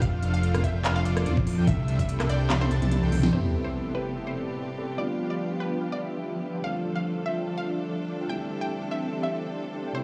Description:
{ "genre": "future bass", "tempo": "145 BPM", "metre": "4/4", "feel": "swing 54% on 16ths, half-time", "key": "C major", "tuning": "A4 = 442 Hz", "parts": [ { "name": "unison pluck", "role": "melody", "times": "0.0-10.0 s", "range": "B4 to G5", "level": "-39 LUFS", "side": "equal", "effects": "vintage 12-bit sampler grit, sidechain pumping, dub echo" }, { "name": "bright studio string section", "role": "sustained chords", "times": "0.0-10.0 s", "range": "C3 to A4", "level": "-40 LUFS", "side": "equal", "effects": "sidechain pumping" }, { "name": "airy dreamy lead", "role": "arpeggios", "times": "0.0-3.3 s", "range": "D6 to A6", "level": "-45 LUFS", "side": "equal", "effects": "chorus, sidechain pumping" }, { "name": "soft supersaw", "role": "riff", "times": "0.0-10.0 s", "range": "C4 to A5", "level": "-35 LUFS", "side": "equal", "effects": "sidechain pumping, low-pass filter" }, { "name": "fat analog bass", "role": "bass", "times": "0.0-3.3 s", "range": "F1 to F2", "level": "-27 LUFS", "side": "equal", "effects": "sidechain pumping" }, { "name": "electronic kick drum", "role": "drums", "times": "0.0-2.1 s", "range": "none", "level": "-28 LUFS", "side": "equal", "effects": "none" }, { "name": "pop drum kit", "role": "drums", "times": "0.0-3.4 s", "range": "crash cymbal, handclaps, hi-hat, rim click, snare drum, toms", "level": "-32 LUFS", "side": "equal", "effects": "low-pass filter on snare, low-pass filter on hats, low-pass filter on toms, low-pass filter on cymbals" }, { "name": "mellow tine electric piano", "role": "accompaniment", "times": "3.3-10.0 s", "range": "C3 to F4", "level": "-36 LUFS", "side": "equal", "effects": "sidechain pumping, tape echo" }, { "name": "sub drop", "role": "sound effects", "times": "3.3-5.0 s", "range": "none", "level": "-35 LUFS", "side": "equal", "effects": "none" } ], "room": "light reverb, digital ambience", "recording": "played on a big sound system in a bare room, large studio reverb, small room ambience", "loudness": "-27 LUFS", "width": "mono", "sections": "0.0-3.3 A section; 3.3-10.0 B section", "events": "drop 0.0-3.3; drum fill 2.5-3.3; band accent 3.2; impact 3.3-5.0", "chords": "0.0 F6; 1.7 C69; 3.3 Am9; 5.0 G7; 6.6 F6; 8.3 C69", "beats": "| 0.02 0.43 0.85 1.26 | 1.67 2.09 2.50 2.92 | 3.33 3.74 4.16 4.57 | 4.98 5.40 5.81 6.22 | 6.64 7.05 7.47 7.88 | 8.29 8.71 9.12 9.54 | 9.95" }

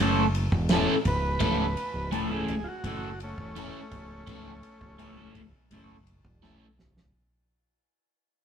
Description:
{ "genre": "psychedelic rock", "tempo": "84 BPM", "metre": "4/4", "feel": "straight", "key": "unclear", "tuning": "A4 = 440 Hz", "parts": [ { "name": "crunchy overdriven guitar", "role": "riff", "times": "0.0-6.7 s", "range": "A3 to A4", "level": "-28 LUFS", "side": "equal", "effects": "phaser" }, { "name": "growling fingered electric bass", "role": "bass", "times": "0.0-7.1 s", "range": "C#1 to F#1", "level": "-31 LUFS", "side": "equal", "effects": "overdrive" }, { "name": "damped 70s drum kit", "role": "drums", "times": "0.3-7.1 s", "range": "kick drum, ride cymbal, snare drum", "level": "-30 LUFS", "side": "right 1 dB", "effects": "none" }, { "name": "combo organ", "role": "melody", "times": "1.1-5.3 s", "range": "A3 to B4", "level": "-36 LUFS", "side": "right 1 dB", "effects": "none" } ], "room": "moderate stone room reverb, RT60 1.4 s", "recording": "rough rehearsal-room recording, tube saturation, faint mains hum", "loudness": "-25 LUFS", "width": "side -8 dB against mid", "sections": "0.0-7.1 A section", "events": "fade-out 0.0-7.1; transistor combo organ solo 0.0-7.1; drum fill 6.4-7.1", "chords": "0.0 A/C#", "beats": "0.70 | 1.42 2.13 2.85 3.56 | 4.27 4.99 5.70 6.42" }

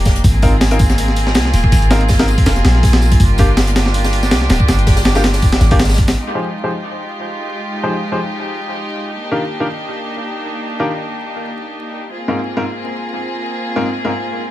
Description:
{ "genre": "drum and bass, jungle", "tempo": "162 BPM", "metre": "4/4", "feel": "swing 54% on 16ths", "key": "F dorian", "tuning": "A4 = 440 Hz", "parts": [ { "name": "rich chamber string section", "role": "sustained chords", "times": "0.0-14.5 s", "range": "Ab3 to Ab4", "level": "-21 LUFS", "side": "equal", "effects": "none" }, { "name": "warm 808-style bass", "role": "bass", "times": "0.0-6.2 s", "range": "D1 to C2", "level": "-14 LUFS", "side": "equal", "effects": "none" }, { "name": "breakbeat sampler-style drum kit", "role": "drums", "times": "0.1-6.2 s", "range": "hi-hat, kick drum, snare drum", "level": "-14 LUFS", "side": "equal", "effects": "none" }, { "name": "open jazz drum kit", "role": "drums", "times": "0.1-6.2 s", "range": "hi-hat, snare drum, tambourine", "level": "-26 LUFS", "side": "equal", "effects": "high-pass filter on hats, high-pass filter on snare, high-pass filter on perc, high-pass filter on room" }, { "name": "clear baby grand piano", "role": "stabs", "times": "0.4-14.1 s", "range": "Ab2 to C5", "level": "-22 LUFS", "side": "left 1 dB", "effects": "low-pass filter, dub echo" } ], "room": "small room ambience", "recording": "vinyl crackle", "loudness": "-13 LUFS", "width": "side -15 dB against mid", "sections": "0.0-6.2 A section; 6.2-14.5 B section", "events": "drop 0.0-6.2", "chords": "0.2 Ab69; 3.2 Gm7; 6.2 Fm9; 9.1 Ebmaj7; 12.1 Ab69", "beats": "| 0.24 0.61 0.98 1.35 | 1.72 2.09 2.46 2.83 | 3.20 3.57 3.94 4.32 | 4.68 5.06 5.43 5.80 | 6.17 6.54 6.91 7.28 | 7.65 8.02 8.39 8.76 | 9.13 9.50 9.87 10.24 | 10.61 10.98 11.35 11.72 | 12.09 12.46 12.83 13.20 | 13.57 13.95 14.31" }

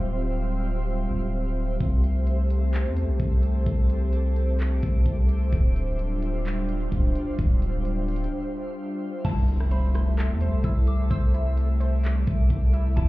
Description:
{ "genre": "hip hop, atmospheric cloud-rap", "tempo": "129 BPM", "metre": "4/4", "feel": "half-time", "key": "C major", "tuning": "A4 = 440 Hz", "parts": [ { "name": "airy breathy pad", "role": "sustained chords", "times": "0.0-13.1 s", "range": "C3 to E5", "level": "-31 LUFS", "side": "equal", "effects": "chorus, sidechain pumping" }, { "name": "long sustained 808-style bass", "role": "bass", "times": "0.0-13.1 s", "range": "D1 to E2", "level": "-23 LUFS", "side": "equal", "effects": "none" }, { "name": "twinkling granular texture", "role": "texture", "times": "0.0-13.1 s", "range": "F4 to D6", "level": "-42 LUFS", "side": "left 1 dB", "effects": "built-in reverb" }, { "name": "trap drum kit", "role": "drums", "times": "1.8-13.1 s", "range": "crash cymbal, handclaps, hi-hat, kick drum, rim click", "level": "-25 LUFS", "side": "equal", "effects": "none" }, { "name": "soft synth bell", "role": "melody", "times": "9.2-13.1 s", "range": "A5 to E6", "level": "-41 LUFS", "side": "left 1 dB", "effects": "chorus, phaser, ping-pong delay" }, { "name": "warbly dusty pluck", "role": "arpeggios", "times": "9.2-13.1 s", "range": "E4 to C5", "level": "-38 LUFS", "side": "right 2 dB", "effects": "chorus, ping-pong delay" }, { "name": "impact", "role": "sound effects", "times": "9.2-11.1 s", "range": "none", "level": "-34 LUFS", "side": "equal", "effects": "none" } ], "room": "digital ambience", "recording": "heard muffled through a wall, club reverb, EQ", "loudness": "-22 LUFS", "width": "side -18 dB against mid", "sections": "0.0-9.2 A section; 9.2-13.1 B section", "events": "break 8.3-9.2; impact 9.2-11.1", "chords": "0.0 Dm11; 1.8 C6; 5.5 Dm11; 9.2 C6", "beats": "0.41 0.88 1.34 | 1.81 2.27 2.74 3.20 | 3.67 4.13 4.60 5.06 | 5.53 5.99 6.46 6.92 | 7.39 7.85 8.32 8.78 | 9.25 9.71 10.18 10.64 | 11.11 11.57 12.04 12.50 | 12.97" }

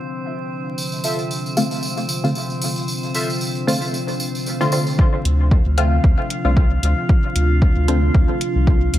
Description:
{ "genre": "dub techno", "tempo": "114 BPM", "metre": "4/4", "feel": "swing 55% on 16ths", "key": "D minor", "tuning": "A4 = 438 Hz", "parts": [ { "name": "deep dark ambient pad", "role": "sustained chords", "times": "0.0-9.0 s", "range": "C4 to F4", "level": "-26 LUFS", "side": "equal", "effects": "chorus, built-in reverb, sidechain pumping" }, { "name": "drifting glass-harmonics texture", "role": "texture", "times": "0.0-9.0 s", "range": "C4 to F5", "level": "-30 LUFS", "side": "left 2 dB", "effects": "chorus, built-in reverb, sidechain pumping" }, { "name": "tambourine", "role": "percussion", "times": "0.8-5.0 s", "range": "none", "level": "-27 LUFS", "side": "right 1 dB", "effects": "none" }, { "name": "warbly lo-fi synth keys", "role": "riff", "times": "1.0-3.3 s", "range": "F4 to E5", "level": "-30 LUFS", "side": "right 1 dB", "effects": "chorus, phaser, sidechain pumping, dub echo" }, { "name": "filtered dub chord stab", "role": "stabs", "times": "1.6-8.0 s", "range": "D3 to F4", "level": "-23 LUFS", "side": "left 1 dB", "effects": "chorus, phaser, sidechain pumping, dub echo" }, { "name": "electronic kick drum", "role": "drums", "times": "5.0-8.8 s", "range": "none", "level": "-15 LUFS", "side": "equal", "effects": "none" }, { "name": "round analog bass", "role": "bass", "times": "5.3-9.0 s", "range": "C2 to D2", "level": "-17 LUFS", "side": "equal", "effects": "sidechain pumping" }, { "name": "electronic hi-hat", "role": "drums", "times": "5.3-9.0 s", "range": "none", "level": "-27 LUFS", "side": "left 1 dB", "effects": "low-pass filter on hats, low-pass filter on room" } ], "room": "light reverb", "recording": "vinyl crackle", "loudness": "-16 LUFS", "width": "side -13 dB against mid", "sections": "0.0-5.0 A section; 5.0-9.0 B section", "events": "filter sweep on synth stab 0.0-5.0", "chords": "0.0 Dm7", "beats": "0.25 | 0.78 1.30 1.83 2.36 | 2.88 3.41 3.94 4.46 | 4.99 5.51 6.04 6.57 | 7.09 7.62 8.15 8.67" }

